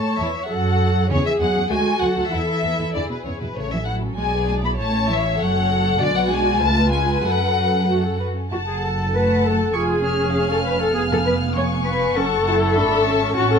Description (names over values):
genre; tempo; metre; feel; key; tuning
quick classical-period movement for string orchestra; 99 BPM; 2/4; straight; A major, F# minor from 6.0 s; A4 = 440 Hz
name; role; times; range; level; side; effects
muted chamber violin section; melody; 0.0-13.6 s; B4 to E#6; -24 LUFS; left 4 dB; none
muted chamber violin section; second line; 0.0-13.6 s; G#3 to B5; -27 LUFS; left 4 dB; none
muted chamber viola section; accompaniment; 0.0-13.6 s; A3 to C#5; -25 LUFS; right 2 dB; none
muted chamber cello section; bass; 0.0-13.6 s; B2 to C#5; -23 LUFS; equal; none
muted chamber double bass section; bass; 0.2-13.6 s; E#1 to F#2; -24 LUFS; right 1 dB; none
room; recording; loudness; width
light reverb; none; -18 LUFS; side -6 dB against mid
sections
0.0-8.5 A section; 8.5-13.6 B section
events
none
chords
0.0 A; 0.5 F#m; 1.1 C#m; 1.7 D; 2.3 Esus4; 2.9 E; 3.6 A; 4.2 E7/B; 4.8 A; 5.4 F#m; 6.0 G#m7b5/B; 6.6 C#7; 7.2 F#m; 9.7 C#7/E#; 12.2 F#m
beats
0.50 | 1.10 1.70 | 2.32 2.94 | 3.56 4.18 | 4.79 5.38 | 5.99 6.60 | 7.23 7.88 | 8.51 9.13 | 9.74 10.35 | 10.95 11.55 | 12.16 12.76 | 13.36